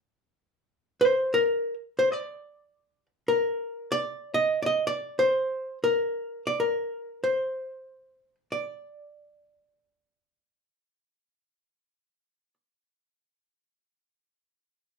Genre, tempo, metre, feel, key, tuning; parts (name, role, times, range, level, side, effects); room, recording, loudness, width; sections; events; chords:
jazz; 187 BPM; 4/4; swing 62% on 8ths; A4 = 440 Hz
archtop guitar, miked and amplified; solo; 1.0-12.5 s; Bb4 to Eb5; -24 LUFS; equal
wet club reverb, RT60 0.5 s; heard from further back in the room; -25 LUFS; side -4 dB against mid
0.0-3.4 A section; 3.4-8.5 B section; 8.5-11.1 C section